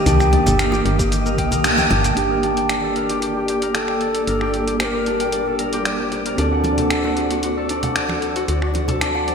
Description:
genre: organic downtempo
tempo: 114 BPM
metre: 4/4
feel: straight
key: G harmonic minor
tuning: A4 = 440 Hz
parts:
  - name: breathy bright bass bansuri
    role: melody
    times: 0.0-6.1 s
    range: G4 to C5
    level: -25 LUFS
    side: left 1 dB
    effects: ping-pong delay
  - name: granular cloud pad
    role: sustained chords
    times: 0.0-9.3 s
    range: Eb3 to D5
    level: -25 LUFS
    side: equal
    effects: built-in reverb, analog chorus, sidechain pumping
  - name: concert harp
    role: arpeggios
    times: 0.0-9.3 s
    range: D4 to G5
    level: -23 LUFS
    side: left 2 dB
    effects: vintage 12-bit sampler grit, low-pass filter, ping-pong delay
  - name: woody FM bass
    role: bass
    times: 0.0-9.3 s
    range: G1 to D2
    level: -24 LUFS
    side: equal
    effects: none
  - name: wind-like tuned noise texture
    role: texture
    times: 0.0-9.3 s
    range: D5 to Eb5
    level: -32 LUFS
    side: left 1 dB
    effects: built-in reverb, ensemble chorus
  - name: dusty soul sampler-style drum kit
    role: drums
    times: 0.1-9.3 s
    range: finger snaps, hi-hat, shaker, toms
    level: -24 LUFS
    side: equal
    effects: studio reverb
  - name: bongos and congas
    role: percussion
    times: 0.2-2.1, 6.6-9.3 s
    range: none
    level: -29 LUFS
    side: right 2 dB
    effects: none
  - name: electronic kick drum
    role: drums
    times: 1.0-1.5 s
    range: none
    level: -24 LUFS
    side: equal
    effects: studio reverb
  - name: tine electric piano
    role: accompaniment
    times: 2.1-9.3 s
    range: Bb3 to G5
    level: -26 LUFS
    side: right 3 dB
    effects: sidechain pumping, ping-pong delay
room: wet lush hall reverb, RT60 2.1 s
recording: bright 1980s-style digital production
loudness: -17 LUFS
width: side -6 dB against mid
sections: 0.0-2.2 A section; 2.2-9.3 B section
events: kick drops out 1.6-2.2; band accent 1.6; filter sweep on ambient pad 2.2-9.3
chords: 0.0 Cm7; 2.2 Gmadd9; 6.4 D7

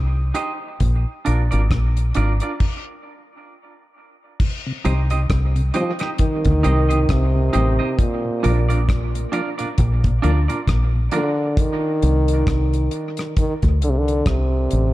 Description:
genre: dub reggae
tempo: 67 BPM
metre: 4/4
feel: swing 58% on 16ths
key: C minor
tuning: A4 = 440 Hz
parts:
  - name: deep dub fingered electric bass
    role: bass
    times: 0.0-14.9 s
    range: Ab1 to D2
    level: -18 LUFS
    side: equal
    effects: none
  - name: semi-hollow electric guitar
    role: accompaniment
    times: 0.3-11.3 s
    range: D4 to Eb5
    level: -27 LUFS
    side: right 4 dB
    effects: spring reverb, dub echo
  - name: damped 70s drum kit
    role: drums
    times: 0.3-14.9 s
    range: crash cymbal, hi-hat, kick drum, rim click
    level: -22 LUFS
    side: equal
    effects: none
  - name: mellow tonewheel organ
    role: accompaniment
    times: 4.7-11.2 s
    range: Bb2 to D4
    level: -30 LUFS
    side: left 1 dB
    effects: none
  - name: mellow French horn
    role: melody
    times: 5.8-14.9 s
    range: Bb2 to F3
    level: -22 LUFS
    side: equal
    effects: dub echo
room: light reverb, small room ambience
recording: dark, warm production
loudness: -17 LUFS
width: side -17 dB against mid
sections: 0.0-4.4 A section; 4.4-14.9 B section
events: stop 2.6-4.4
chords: 0.0 Cm; 0.8 Bb; 4.4 Cm; 8.0 Bb; 11.6 Cm

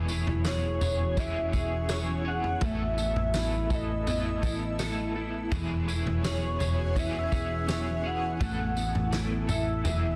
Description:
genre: dream pop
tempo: 83 BPM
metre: 4/4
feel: straight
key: E major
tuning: A4 = 440 Hz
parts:
  - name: electric guitar at the edge of break-up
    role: accompaniment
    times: 0.0-10.2 s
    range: E3 to C#5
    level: -40 LUFS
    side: equal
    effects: tremolo, analog chorus
  - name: shimmering ambient pad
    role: sustained chords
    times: 0.0-10.2 s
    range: E3 to B4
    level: -40 LUFS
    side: equal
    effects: chorus, built-in reverb
  - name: clean electric guitar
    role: arpeggios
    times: 0.0-10.2 s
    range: E3 to C#5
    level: -38 LUFS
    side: equal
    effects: ensemble chorus, digital delay
  - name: vintage muted picked electric bass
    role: bass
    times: 0.0-10.2 s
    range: E1 to A1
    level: -34 LUFS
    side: equal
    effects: none
  - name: glockenspiel with soft plastic mallets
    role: texture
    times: 0.0-8.8 s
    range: G#5 to B6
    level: -49 LUFS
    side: equal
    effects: digital delay
  - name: vintage drum kit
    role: drums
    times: 0.1-10.0 s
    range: kick drum, snare drum, tambourine, toms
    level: -35 LUFS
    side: equal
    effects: none
  - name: warm velvety synth lead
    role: melody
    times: 0.5-10.2 s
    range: C#5 to F#5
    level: -36 LUFS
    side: equal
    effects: chorus, digital delay
room: light reverb, small room ambience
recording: dense, heavily limited modern master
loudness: -29 LUFS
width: mono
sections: 0.0-10.2 A section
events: none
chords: 0.0 E6; 2.6 Asus2; 5.5 E6; 8.4 Asus2

